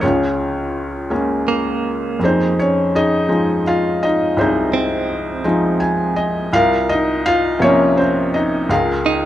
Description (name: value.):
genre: acoustic folk-pop ballad.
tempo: 55 BPM (dotted quarters).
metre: 6/8.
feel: straight.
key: F minor.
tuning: A4 = 440 Hz.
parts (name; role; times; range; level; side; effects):
felt-muted upright piano; melody; 0.0-9.3 s; C2 to Ab5; -15 LUFS; equal; none.
direct-recorded clean electric guitar; arpeggios; 0.0-9.3 s; Bb3 to Eb4; -22 LUFS; right 5 dB; tremolo.
room: light reverb.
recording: minimal, uncompressed stereo recording.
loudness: -15 LUFS.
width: side -12 dB against mid.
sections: 0.0-9.3 A section.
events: felt piano fill 5.4-6.5.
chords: 0.0 Bbm7/Db; 2.2 Fm7; 6.5 C7sus4; 8.7 Bbm7/Db.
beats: | 0.03 1.11 | 2.21 3.29 | 4.37 5.45 | 6.52 7.60 | 8.69.